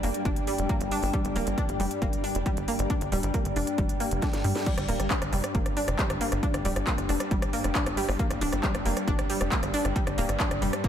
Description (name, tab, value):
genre	driving peak-time techno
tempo	136 BPM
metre	4/4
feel	straight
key	unclear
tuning	A4 = 439 Hz
part	analog pluck	riff	0.0-10.9 s	G3 to D4	-32 LUFS	equal	chorus, sidechain pumping, diffuse ambient delay
part	tight sequencer bass	bass	0.0-10.9 s	D1 to G2	-31 LUFS	equal	sidechain pumping
part	swarming drone	drone	0.0-10.9 s	G2 to G3	-35 LUFS	left 2 dB	built-in reverb, sidechain pumping
part	techno drum kit	drums	0.0-10.9 s	crash cymbal, handclaps, hi-hat, rim click, snare drum	-32 LUFS	equal	overdrive, sidechain pumping on hats, sidechain pumping on cymbals
part	warbly tape-like pad	texture	0.0-10.9 s	D4 to G5	-35 LUFS	equal	chorus, built-in reverb, sidechain pumping
part	electronic kick drum	drums	0.3-10.9 s	none	-29 LUFS	equal	overdrive
room	moderate church reverb, RT60 2.7 s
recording	dreamy mix soaked in reverb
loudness	-25 LUFS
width	side -9 dB against mid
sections	0.0-4.7 A section; 4.7-10.9 B section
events	drum fill 4.2-4.7; drop 4.7-10.9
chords	0.0 G5